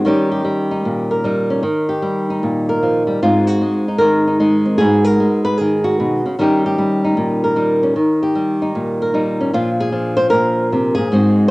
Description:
solo jazz; 152 BPM; 4/4; swing 66% on 8ths; Eb mixolydian; A4 = 440 Hz
flamenco guitar; solo; 0.0-11.5 s; Ab2 to C5; -14 LUFS; equal; cassette tape
light reverb, small room ambience; home recording on cassette; -14 LUFS; side -22 dB against mid
0.0-11.5 A section
0.0 Eb7; 3.2 Ab7; 4.8 Abm7; 6.4 Eb7; 9.5 Bb7

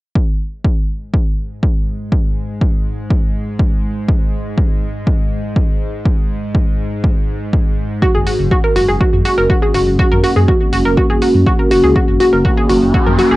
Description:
melodic techno; 122 BPM; 4/4; straight; A4 = 440 Hz
bowed-like drone; drone; 1.0-13.4 s; G#2 to G#3; -26 LUFS; equal; built-in reverb, sidechain pumping
electronic kick drum; drums; 0.2-13.0 s; -14 LUFS; equal; overdrive, cassette tape
dark analog pad; sustained chords; 9.0-13.4 s; A#3 to F#4; -17 LUFS; equal; chorus, sidechain pumping
analog pluck; arpeggios; 8.0-13.3 s; F#4 to A#4; -14 LUFS; equal; chorus, cassette tape, sidechain pumping, tape echo
dark detuned saw bass; bass; 8.1-13.4 s; F#1 to F#2; -17 LUFS; equal; sidechain pumping
electronic hi-hat; drums; 8.3-13.3 s; -28 LUFS; equal; overdrive, cassette tape
riser; sound effects; 12.4-13.4 s; -22 LUFS; left 1 dB
light reverb; home recording on cassette; -12 LUFS; side -18 dB against mid
0.2-13.4 A section
riser 12.4-13.4
0.2 N.C.; 8.0 F#

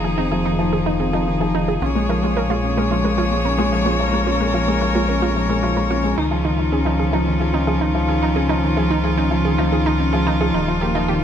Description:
piano and strings electronica; 110 BPM; 4/4; straight; A4 = 439 Hz
clear string quartet; sustained chords; 0.0-11.2 s; F3 to Db5; -24 LUFS; left 1 dB
wide unison pluck; arpeggios; 0.0-11.1 s; Eb4 to Bb4; -26 LUFS; right 6 dB; tape echo
felt-muted upright piano; riff; 0.0-11.2 s; Eb3 to Db4; -20 LUFS; left 2 dB; tape echo
dark detuned saw bass; bass; 0.0-11.2 s; Eb1 to Db2; -23 LUFS; equal
moderate recital hall reverb, RT60 1.6 s, studio ambience; -16 LUFS; side -8 dB against mid
0.0-11.2 A section
0.0 Fm7; 1.8 Bbm7; 6.2 Dbadd9; 10.5 Ebadd9

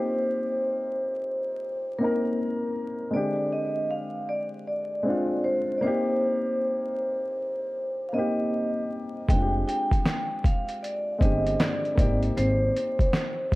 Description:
lo-fi hip hop; 78 BPM; 4/4; swing 62% on 16ths; A4 = 444 Hz
vibraphone with medium mallets; melody; 0.0-13.6 s; Bb4 to G5; -28 LUFS; equal; low-pass filter, analog delay
dark upright piano; accompaniment; 0.0-13.6 s; D3 to Bb4; -30 LUFS; left 1 dB; cassette tape, low-pass filter
upright bass; bass; 9.3-12.7 s; F1 to Ab1; -26 LUFS; equal
lo-fi sampler-style drum kit; drums; 9.3-13.6 s; handclaps, hi-hat, kick drum, snare drum; -24 LUFS; equal; overdrive
light reverb, studio ambience; vinyl crackle, lossy compression artefacts; -24 LUFS; side -20 dB against mid
0.0-13.6 A section
0.0 Eb6/Bb; 3.1 Fm69; 5.8 Eb6/Bb; 9.3 Fm69; 12.0 Abmaj7

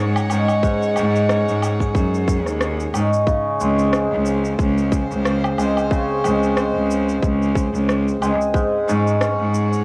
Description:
folktronica; 91 BPM; 4/4; swing 56% on 16ths; Db major; A4 = 439 Hz
rich string quartet; sustained chords; 0.0-9.8 s; Db3 to Gb5; -31 LUFS; equal; cassette tape
cimbalom; arpeggios; 0.0-9.8 s; Ab2 to Ab4; -24 LUFS; equal; cassette tape, tape echo
bright cello; bass; 0.0-9.8 s; Db2 to Ab2; -23 LUFS; equal
electronic woodblock, cabasa and rim click; drums; 0.2-9.8 s; -28 LUFS; equal; overdrive, cassette tape
electronic kick drum; drums; 0.6-8.7 s; -23 LUFS; equal; overdrive, cassette tape
light reverb; home recording on cassette; -19 LUFS; mono
0.0-9.8 A section
0.0 Ab7sus4; 3.3 Dbmaj7; 8.5 Ab7sus4

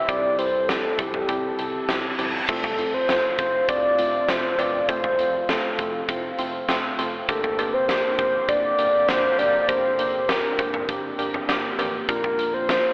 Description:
synth-pop; 100 BPM; 4/4; straight; F major; A4 = 439 Hz
soft octave-layered synth lead; melody; 0.0-12.9 s; G4 to E5; -22 LUFS; equal; chorus, analog delay
sweeping resonant pad; sustained chords; 0.0-12.9 s; C3 to A4; -31 LUFS; equal; lush chorus
warbly dusty pluck; accompaniment; 0.1-12.9 s; G3 to C5; -28 LUFS; right 1 dB; chorus, analog delay
vintage muted fingered electric bass; bass; 0.1-12.8 s; F1 to C2; -46 LUFS; equal
huge arena drum kit; drums; 0.1-12.8 s; cowbell, crash cymbal, hi-hat, kick drum, snare drum, toms; -26 LUFS; equal; analog delay
reverse cymbal; sound effects; 1.6-2.5 s; -31 LUFS; right 1 dB
wet spring reverb, RT60 2.1 s; echo-heavy mix, telephone sound; -20 LUFS; side -28 dB against mid
0.0-2.5 A section; 2.5-12.9 B section
reverse cymbal 1.6-2.5
0.0 C; 2.5 F; 7.3 Gmadd9; 12.1 Bb

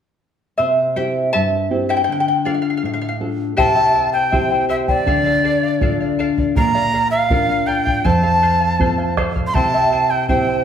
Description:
andean folk, Andean ensemble; 80 BPM; 2/4; straight; A4 = 436 Hz
charango; accompaniment; 0.6-10.6 s; E4 to A5; -20 LUFS; left 1 dB
nylon-string guitar; accompaniment; 0.6-10.6 s; F2 to Bb4; -20 LUFS; left 1 dB
breathy bright large quena; melody; 3.6-10.6 s; D5 to C6; -18 LUFS; right 1 dB
bombo; percussion; 3.6-10.5 s; -22 LUFS; equal
wet large studio reverb, RT60 1.2 s; band playing live in one room; -15 LUFS; side -8 dB against mid
0.6-3.6 A section; 3.6-10.6 B section
charango solo 0.6-3.6
0.6 C; 2.1 Dm; 3.6 C; 5.1 Dm; 6.6 Bb; 8.0 F; 9.5 C

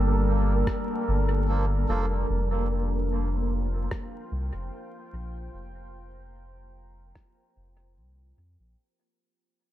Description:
ambient dub; 74 BPM; 4/4; swing 53% on 16ths; A4 = 440 Hz
deep dark ambient pad; sustained chords; 0.0-8.8 s; G3 to Bb5; -33 LUFS; right 1 dB; chorus, built-in reverb
soft dub sub bass; bass; 0.0-8.8 s; F1 to F2; -26 LUFS; equal
wind-like tuned noise texture; texture; 0.0-8.8 s; Bb3; -33 LUFS; left 1 dB; built-in reverb
electronic kick drum; drums; 0.7-7.3 s; -33 LUFS; equal
electronic rim click; drums; 0.7-7.3 s; -41 LUFS; equal; dub echo
melodica; stabs; 1.5-2.1 s; F3 to A4; -37 LUFS; right 4 dB; dub echo
digital ambience; echo-heavy mix, vinyl crackle; -24 LUFS; side -13 dB against mid
0.0-8.8 A section
fade-out 0.0-8.8
0.0 Gm9; 2.3 Fsus24

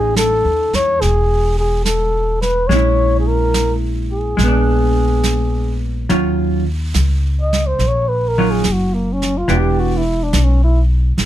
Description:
jazz ballad; 71 BPM; 4/4; swing 68% on 8ths; A4 = 440 Hz
trumpet with bucket mute; melody; 0.0-10.8 s; Bb3 to Eb5; -18 LUFS; equal
hollow-body jazz guitar; accompaniment; 0.0-10.0 s; Eb3 to G4; -20 LUFS; right 2 dB
upright bass; bass; 0.0-11.3 s; E1 to E2; -17 LUFS; equal
jazz brush drum kit; drums; 0.2-11.3 s; brushed snare drum, hi-hat, snare drum; -24 LUFS; right 4 dB
little or no reverb; close, detailed microphones; -14 LUFS; side -12 dB against mid
0.0-6.1 A section; 6.1-11.3 B section
muted trumpet solo 6.1-11.3
0.0 Amaj7#11; 2.7 A#m7b5; 4.4 A#7b9; 6.1 Ebm9; 9.5 Em7

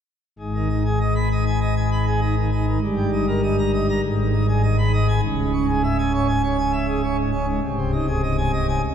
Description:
classical, organ toccata; 99 BPM; 4/4; straight; A4 = 443 Hz
pipe organ, plenum; solo; 0.4-8.9 s; B#0 to B5; -19 LUFS; equal
wet cathedral reverb, RT60 6.6 s; heard from further back in the room; -19 LUFS; side -8 dB against mid
0.4-8.9 A section
0.4 G#m; 2.8 D#/G; 4.0 G#m; 5.2 C#m; 7.6 G#/B#

